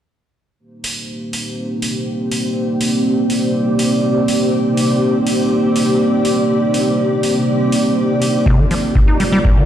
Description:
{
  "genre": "acid house",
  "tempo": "122 BPM",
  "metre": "4/4",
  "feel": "straight",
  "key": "C minor",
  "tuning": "A4 = 436 Hz",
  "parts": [
    { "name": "dark analog pad", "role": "sustained chords", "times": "1.0-9.7 s", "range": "Bb3 to C5", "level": "-18 LUFS", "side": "equal", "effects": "chorus, sidechain pumping" },
    { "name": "granular cloud pad", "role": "texture", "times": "1.6-9.7 s", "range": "C4 to D5", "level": "-18 LUFS", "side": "right 1 dB", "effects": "built-in reverb, sidechain pumping" },
    { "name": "electronic hi-hat", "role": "drums", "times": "0.8-9.3 s", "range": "none", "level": "-25 LUFS", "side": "right 1 dB", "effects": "none" },
    { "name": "acid bass, square", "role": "riff", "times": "8.5-9.6 s", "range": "Bb2 to Eb4", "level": "-16 LUFS", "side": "equal", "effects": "tube saturation, tape echo" },
    { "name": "electronic kick drum", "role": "drums", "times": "8.5-9.5 s", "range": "none", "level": "-14 LUFS", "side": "equal", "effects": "none" }
  ],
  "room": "moderate plate reverb, RT60 1.9 s",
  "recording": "played on a big sound system in a bare room, stone room reverb",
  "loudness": "-14 LUFS",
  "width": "side -10 dB against mid",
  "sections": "0.6-9.7 A section",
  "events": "none",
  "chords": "0.6 Cm7",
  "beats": "| 0.59 1.09 1.58 2.07 | 2.56 3.05 3.54 4.04 | 4.53 5.02 5.51 6.00 | 6.50 6.99 7.48 7.97 | 8.46 8.95 9.45"
}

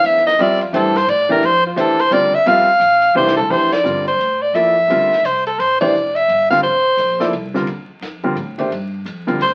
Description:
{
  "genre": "modal jazz",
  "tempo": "173 BPM",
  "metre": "3/4",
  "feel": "swing 62% on 8ths",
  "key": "F major from 3.5 s",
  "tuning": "A4 = 439 Hz",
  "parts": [
    { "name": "breathy soprano saxophone", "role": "melody", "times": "0.0-7.3, 9.4-9.5 s", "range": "F4 to F5", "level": "-16 LUFS", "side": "equal", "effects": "none" },
    { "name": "clear grand piano", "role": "accompaniment", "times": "0.0-9.4 s", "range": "D3 to E5", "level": "-21 LUFS", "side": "equal", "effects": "none" },
    { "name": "upright bass", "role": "bass", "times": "0.0-9.5 s", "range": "F1 to A2", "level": "-33 LUFS", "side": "equal", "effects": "none" },
    { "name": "compact cocktail drum kit", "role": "drums", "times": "0.0-9.5 s", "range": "crash cymbal, hi-hat, kick drum, ride cymbal, snare drum, toms", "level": "-35 LUFS", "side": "equal", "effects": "none" }
  ],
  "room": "wet studio reverb, RT60 0.6 s",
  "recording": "very old 78 rpm record, vinyl crackle",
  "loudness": "-16 LUFS",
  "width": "mono",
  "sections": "0.0-3.5 A section; 3.5-9.5 B section",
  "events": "soprano saxophone solo 0.0-3.5; drum fill 3.2-3.5; band accent 3.7, 5.8",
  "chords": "0.0 Bbmaj9; 3.5 Fmaj9; 7.7 Ebmaj9",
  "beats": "0.04 | 0.39 0.73 1.08 | 1.43 1.77 2.12 | 2.47 2.81 3.16 | 3.50 3.85 4.20 | 4.55 4.89 5.24 | 5.59 5.93 6.28 | 6.63 6.97 7.32 | 7.67 8.02 8.36 | 8.71 9.06 9.40"
}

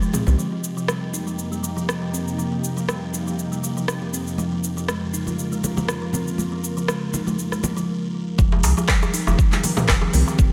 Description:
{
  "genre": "afro house",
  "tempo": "120 BPM",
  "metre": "4/4",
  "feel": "swing 54% on 16ths",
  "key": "unclear",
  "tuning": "A4 = 440 Hz",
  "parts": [
    { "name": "ethereal airy pad", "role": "sustained chords", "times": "0.0-10.5 s", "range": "F2 to Bb4", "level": "-32 LUFS", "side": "equal", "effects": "ensemble chorus, built-in reverb, sidechain pumping" },
    { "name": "buzzing kalimba", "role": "arpeggios", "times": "0.0-10.5 s", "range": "F3 to Eb4", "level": "-28 LUFS", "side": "equal", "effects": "sidechain pumping, low-pass filter, delay" },
    { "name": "deep house drum kit", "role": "drums", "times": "0.0-10.5 s", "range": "cabasa, handclaps, hi-hat, rim click, toms", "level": "-28 LUFS", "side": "equal", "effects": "small room ambience" },
    { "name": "congas", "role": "percussion", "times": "0.0-0.4, 4.4-10.5 s", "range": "none", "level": "-32 LUFS", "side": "equal", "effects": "none" },
    { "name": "djembe", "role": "percussion", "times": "0.1-0.2, 8.5-10.4 s", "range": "none", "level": "-31 LUFS", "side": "equal", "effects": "none" },
    { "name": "round analog bass", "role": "bass", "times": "0.3-0.4, 8.4-10.5 s", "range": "F1 to C2", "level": "-21 LUFS", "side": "equal", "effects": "tube saturation, sidechain pumping" },
    { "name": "electronic kick drum", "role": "drums", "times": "8.4-10.5 s", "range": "none", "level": "-20 LUFS", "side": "equal", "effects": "small room ambience" }
  ],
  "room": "light reverb",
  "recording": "none",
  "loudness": "-23 LUFS",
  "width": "mono",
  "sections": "0.4-8.4 A section; 8.4-10.5 B section",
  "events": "drop 8.4-10.5",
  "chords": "0.4 Cm7/F; 4.4 Bbm/F; 8.4 Cm7/F",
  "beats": "| 0.39 0.89 1.39 1.89 | 2.38 2.88 3.38 3.88 | 4.38 4.88 5.38 5.88 | 6.38 6.88 7.38 7.88 | 8.38 8.88 9.38 9.88 | 10.38"
}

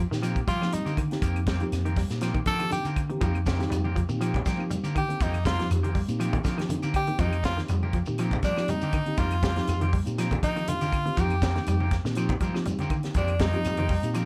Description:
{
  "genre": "afrobeat",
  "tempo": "121 BPM",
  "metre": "4/4",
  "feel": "swing 53% on 16ths",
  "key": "unclear",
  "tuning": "A4 = 440 Hz",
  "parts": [
    { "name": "clean electric guitar", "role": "arpeggios", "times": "0.0-14.2 s", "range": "D3 to G3", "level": "-35 LUFS", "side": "equal", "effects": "none" },
    { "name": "fingered electric bass", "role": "bass", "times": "0.0-14.3 s", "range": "F2 to F3", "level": "-31 LUFS", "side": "equal", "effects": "none" },
    { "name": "mellow tine electric piano", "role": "accompaniment", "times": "0.1-14.3 s", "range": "Bb3 to A4", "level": "-37 LUFS", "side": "equal", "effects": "phaser" },
    { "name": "tight funk drum kit", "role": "drums", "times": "0.1-14.3 s", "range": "hi-hat, kick drum, snare drum", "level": "-32 LUFS", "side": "equal", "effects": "none" },
    { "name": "shekere", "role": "percussion", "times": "0.1-14.3 s", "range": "none", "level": "-42 LUFS", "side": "equal", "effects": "none" },
    { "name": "electric guitar at the edge of break-up", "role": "stabs", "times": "0.2-14.3 s", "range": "Eb3 to G4", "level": "-40 LUFS", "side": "equal", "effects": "none" },
    { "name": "claves", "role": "percussion", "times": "0.2-14.3 s", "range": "none", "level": "-48 LUFS", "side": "equal", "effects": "none" },
    { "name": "edgy tenor saxophone", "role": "melody", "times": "0.5-14.2 s", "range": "D4 to A4", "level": "-32 LUFS", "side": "equal", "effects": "none" },
    { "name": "congas", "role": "percussion", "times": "3.2-14.3 s", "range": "none", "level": "-36 LUFS", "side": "equal", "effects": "none" }
  ],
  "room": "light reverb",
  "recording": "none",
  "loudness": "-27 LUFS",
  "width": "mono",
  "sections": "0.0-14.3 A section",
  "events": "tenor saxophone solo 0.0-14.3",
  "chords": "0.0 F9sus4",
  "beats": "0.23 0.72 | 1.22 1.72 2.22 2.72 | 3.22 3.71 4.21 4.71 | 5.21 5.71 6.20 6.70 | 7.20 7.70 8.19 8.69 | 9.19 9.69 10.18 10.68 | 11.18 11.67 12.17 12.66 | 13.16 13.65 14.15"
}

